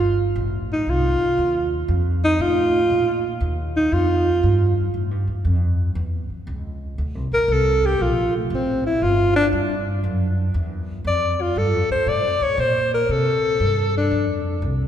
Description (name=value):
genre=jazz, small-group swing and bop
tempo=118 BPM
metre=4/4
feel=swing 67% on 8ths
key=F major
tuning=A4 = 440 Hz
part: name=warm alto saxophone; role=melody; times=0.0-14.4 s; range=A3 to D5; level=-20 LUFS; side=equal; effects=none
part: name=upright bass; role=bass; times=0.0-14.9 s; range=G1 to C3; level=-22 LUFS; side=equal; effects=none
room=wet church reverb, RT60 3.1 s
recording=recorded in a church or concert hall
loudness=-18 LUFS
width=side -10 dB against mid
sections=0.0-14.9 A section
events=none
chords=0.0 F; 0.9 Cm; 1.9 F; 2.9 Bb5; 4.9 A7; 7.0 N.C.; 9.0 G5; 10.0 Esus2; 11.1 F5; 13.1 C5; 14.1 F5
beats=0.36 | 0.87 1.38 1.89 2.40 | 2.91 3.42 3.93 4.43 | 4.94 5.45 5.96 6.47 | 6.98 7.49 8.00 8.51 | 9.02 9.53 10.04 10.54 | 11.05 11.56 12.07 12.58 | 13.09 13.60 14.11 14.62